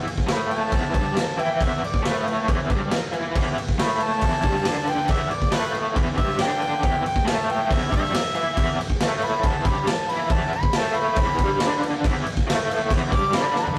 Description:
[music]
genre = garage rock duo or trio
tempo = 138 BPM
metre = 4/4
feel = straight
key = E minor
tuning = A4 = 440 Hz
[part]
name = raw garage guitar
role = riff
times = 0.0-13.8 s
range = E2 to E4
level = -27 LUFS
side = equal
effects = overdrive, tremolo
[part]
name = raw garage drum kit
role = drums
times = 0.1-13.8 s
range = crash cymbal, hi-hat, kick drum, snare drum, toms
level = -26 LUFS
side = equal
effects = none
[part]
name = clear harmonica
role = melody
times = 0.3-13.8 s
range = B4 to D6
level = -28 LUFS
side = equal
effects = overdrive
[sound]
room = light reverb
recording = rough rehearsal-room recording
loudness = -23 LUFS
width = mono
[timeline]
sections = 0.0-13.8 A section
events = harmonica solo 0.0-13.8; drum fill 13.5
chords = 0.0 Em

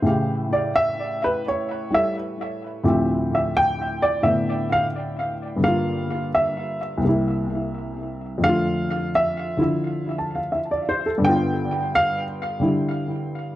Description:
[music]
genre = solo jazz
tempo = 86 BPM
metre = 4/4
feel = swing 68% on 8ths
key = unclear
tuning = A4 = 440 Hz
[part]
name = dark baby grand piano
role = solo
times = 0.0-13.6 s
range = C2 to A5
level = -20 LUFS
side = equal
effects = tape echo
[sound]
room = moderate spring reverb, RT60 1.2 s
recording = echo-heavy mix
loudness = -20 LUFS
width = side -14 dB against mid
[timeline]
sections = 0.0-13.6 A section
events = grand piano solo 0.0-13.6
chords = 0.0 A7; 2.8 Dm7; 5.6 Gm7; 7.0 C7; 8.4 F6; 11.2 G7

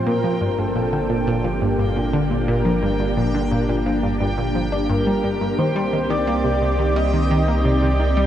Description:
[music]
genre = ambient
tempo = 87 BPM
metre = 4/4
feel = straight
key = G minor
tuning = A4 = 444 Hz
[part]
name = breathy flute-like synth lead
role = melody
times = 0.0-8.3 s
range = G4 to Eb5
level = -25 LUFS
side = equal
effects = analog chorus, tape echo
[part]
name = string machine, full ensemble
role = sustained chords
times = 0.0-8.3 s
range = Bb3 to C5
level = -24 LUFS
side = equal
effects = ensemble chorus
[part]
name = warm sub bass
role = bass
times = 0.0-8.3 s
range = G1 to C2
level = -24 LUFS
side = equal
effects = none
[part]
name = bubbling stepped-filter texture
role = texture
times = 0.0-8.3 s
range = G5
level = -32 LUFS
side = right 2 dB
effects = chorus, built-in reverb
[part]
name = analog pluck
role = riff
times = 0.1-8.2 s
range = G2 to D4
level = -22 LUFS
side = equal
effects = chorus, phaser, tape echo
[sound]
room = wet huge ambient reverb, RT60 8.8 s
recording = dreamy mix soaked in reverb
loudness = -18 LUFS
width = side -11 dB against mid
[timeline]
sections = 0.0-8.3 A section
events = fade-in on sub bass 0.0-8.3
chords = 0.1 Gm; 5.6 Cmadd9

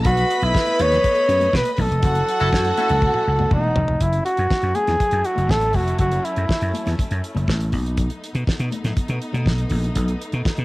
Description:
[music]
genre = disco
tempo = 121 BPM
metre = 4/4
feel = straight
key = F# dorian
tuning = A4 = 440 Hz
[part]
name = warm studio violin section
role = second line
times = 0.0-3.7 s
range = F#4 to B5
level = -24 LUFS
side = right 1 dB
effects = cassette tape
[part]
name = vintage slap bass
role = bass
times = 0.0-10.6 s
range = E1 to B2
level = -22 LUFS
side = equal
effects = none
[part]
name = damped 70s drum kit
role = drums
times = 0.0-10.6 s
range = hi-hat, kick drum, snare drum, toms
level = -23 LUFS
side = equal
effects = cassette tape
[part]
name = congas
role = percussion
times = 0.0-10.6 s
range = none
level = -32 LUFS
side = left 4 dB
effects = none
[part]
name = warm flugelhorn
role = melody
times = 0.1-7.0 s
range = D#4 to C#5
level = -20 LUFS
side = equal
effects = cassette tape
[part]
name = clear studio string section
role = sustained chords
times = 0.1-10.6 s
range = E3 to D#5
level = -32 LUFS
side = left 1 dB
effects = cassette tape
[part]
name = bright horn section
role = stabs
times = 2.4-2.9 s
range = E4 to A4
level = -27 LUFS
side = equal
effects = cassette tape, analog delay
[sound]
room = light reverb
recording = home recording on cassette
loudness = -18 LUFS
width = side -19 dB against mid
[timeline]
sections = 0.0-4.0 A section; 4.0-10.6 B section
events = band accent 2.0-4.0; drum fill 3.0-4.0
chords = 0.1 B7; 2.0 F#m7; 7.7 B7

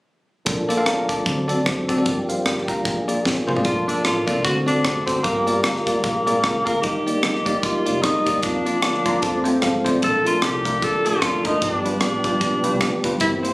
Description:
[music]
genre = uptempo gospel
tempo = 150 BPM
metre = 4/4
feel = swing 57% on 8ths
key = Bb major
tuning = A4 = 438 Hz
[part]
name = bell-like tine electric piano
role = accompaniment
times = 0.5-13.5 s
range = G2 to D6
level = -24 LUFS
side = left 1 dB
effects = fast stereo tremolo
[part]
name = tonewheel organ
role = sustained chords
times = 0.5-13.5 s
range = D3 to A4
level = -24 LUFS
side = equal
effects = slow rotary speaker, overdrive
[part]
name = upright bass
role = bass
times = 0.5-13.5 s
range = F1 to A2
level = -33 LUFS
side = equal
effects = none
[part]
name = crisp fusion drum kit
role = drums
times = 0.5-13.5 s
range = hi-hat, kick drum, rim click, snare drum, toms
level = -25 LUFS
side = equal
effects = none
[part]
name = warm tenor saxophone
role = melody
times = 3.6-13.5 s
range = Bb3 to Bb4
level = -22 LUFS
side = equal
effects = none
[sound]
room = moderate concert hall reverb, RT60 2.1 s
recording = recorded on a phone in the room, studio reverb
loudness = -18 LUFS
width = side -22 dB against mid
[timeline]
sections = 0.5-3.6 A section; 3.6-13.5 B section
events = drum fill 3.2-3.6; tine electric piano fill 8.8-10.0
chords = 0.5 Bbmaj7; 1.3 D7; 2.1 Gm7; 2.9 Bb7; 3.6 Bbmaj7; 4.4 D7; 5.2 Gm7; 6.0 Bb7; 6.8 Ebmaj7; 8.4 Bb/F; 9.2 F; 10.0 Bbmaj7; 11.6 G7

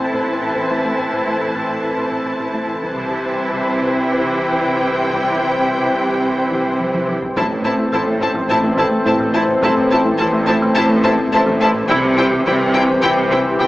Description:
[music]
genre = cinematic, hybrid orchestral and electronic film score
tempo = 106 BPM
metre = 4/4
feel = straight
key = A minor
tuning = A4 = 441 Hz
[part]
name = warm symphonic violin section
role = second line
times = 0.0-13.7 s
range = C5 to A5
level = -23 LUFS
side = left 1 dB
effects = none
[part]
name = rich symphonic viola section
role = accompaniment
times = 0.0-13.7 s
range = E3 to E4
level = -22 LUFS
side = equal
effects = none
[part]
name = warm analog pad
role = sustained chords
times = 0.0-13.7 s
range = E3 to C5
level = -21 LUFS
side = equal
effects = chorus
[part]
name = thumb-piano-like synth pluck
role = arpeggios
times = 0.0-13.7 s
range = C3 to A4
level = -28 LUFS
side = equal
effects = none
[part]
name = round analog bass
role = riff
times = 0.0-13.7 s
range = C2 to A3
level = -29 LUFS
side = left 1 dB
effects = none
[part]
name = rich symphonic cello section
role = bass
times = 0.0-13.7 s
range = A2 to C3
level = -23 LUFS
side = right 1 dB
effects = none
[part]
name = warm sub bass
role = bass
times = 0.0-13.7 s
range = A1 to C2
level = -40 LUFS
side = equal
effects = none
[part]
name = warm symphonic double bass section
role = bass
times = 0.0-13.7 s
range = A1 to C2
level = -26 LUFS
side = right 1 dB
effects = none
[part]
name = taiko ensemble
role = drums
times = 2.8-13.7 s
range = none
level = -30 LUFS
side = equal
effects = none
[part]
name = rich symphonic violin section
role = melody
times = 7.4-13.7 s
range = G5 to A5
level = -21 LUFS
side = left 1 dB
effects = none
[part]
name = mellow French horn section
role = sustained chords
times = 7.4-13.7 s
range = E3 to C4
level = -24 LUFS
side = left 2 dB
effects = none
[sound]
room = wet scoring stage reverb, RT60 1.8 s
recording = small speaker sound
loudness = -14 LUFS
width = side -17 dB against mid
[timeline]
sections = 0.0-7.4 A section; 7.4-13.7 B section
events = drum fill 6.8-7.4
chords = 0.0 Am; 2.8 C; 7.4 Am; 11.9 C

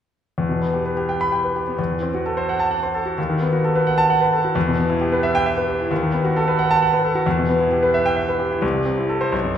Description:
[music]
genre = classical, virtuoso piano study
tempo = 87 BPM (dotted quarters)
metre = 6/8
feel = rubato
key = E minor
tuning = A4 = 444 Hz
[part]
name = clear grand piano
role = solo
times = 0.4-9.6 s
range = B1 to B5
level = -18 LUFS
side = equal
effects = none
[sound]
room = wet recital hall reverb, RT60 1.6 s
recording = recorded in a church or concert hall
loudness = -17 LUFS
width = side -9 dB against mid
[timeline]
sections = 0.4-9.6 A section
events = none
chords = 0.4 Em; 1.8 F#m7b5/E; 3.2 B7/D#; 4.6 Em; 5.9 B7/D#; 7.3 Em; 8.6 Am/C

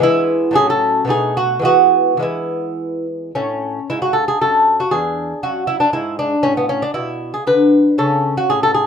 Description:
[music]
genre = classical, baroque-style dance for lute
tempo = 104-121 BPM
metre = 3/4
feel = rubato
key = E major, A major from 3.4 s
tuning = A4 = 440 Hz
[part]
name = lute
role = solo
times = 0.0-8.9 s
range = E2 to B4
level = -14 LUFS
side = equal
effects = none
[sound]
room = moderate studio reverb, RT60 0.6 s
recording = band playing live in one room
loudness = -14 LUFS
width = side -7 dB against mid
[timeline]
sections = 0.0-3.4 A section; 3.4-8.9 A section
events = none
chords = 0.0 E; 0.6 F#m/A; 1.1 B7; 1.7 E; 3.4 A; 4.9 E7; 6.5 Aadd9; 8.0 Amaj13

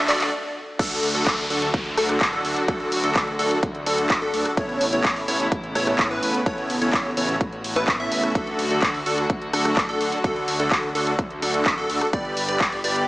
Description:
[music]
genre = EDM, festival progressive house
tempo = 127 BPM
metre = 4/4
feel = straight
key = D major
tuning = A4 = 440 Hz
[part]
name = rich chamber string section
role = sustained chords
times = 0.0-13.1 s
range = C#3 to G4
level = -30 LUFS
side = equal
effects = sidechain pumping
[part]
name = plucky unison lead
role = arpeggios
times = 0.0-13.0 s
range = A4 to E5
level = -27 LUFS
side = equal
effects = phaser, lush chorus, sidechain pumping, tape echo
[part]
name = dense compressed supersaw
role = riff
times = 0.0-13.0 s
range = B3 to E5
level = -26 LUFS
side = equal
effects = sidechain pumping, tape echo
[part]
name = wide detuned saw bass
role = bass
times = 0.0-13.0 s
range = D1 to A2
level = -31 LUFS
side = equal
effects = chorus, sidechain pumping, high-pass filter
[part]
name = riser and downlifter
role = sound effects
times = 0.0-4.6 s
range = none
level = -30 LUFS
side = equal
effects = none
[part]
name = big-room dance drum kit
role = drums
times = 0.1-13.1 s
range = crash cymbal, handclaps, hi-hat, rim click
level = -25 LUFS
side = equal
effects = none
[part]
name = electronic kick drum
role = drums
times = 0.8-12.7 s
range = none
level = -25 LUFS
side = equal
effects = none
[sound]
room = moderate lush hall reverb, RT60 2.0 s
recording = small speaker sound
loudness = -20 LUFS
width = side -19 dB against mid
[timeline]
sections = 0.8-13.1 A section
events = drum fill 0.0-0.3; stop 0.3-0.8; drop 0.8-13.1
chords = 0.0 G; 0.8 D; 4.6 Aadd9; 8.4 D; 12.1 G

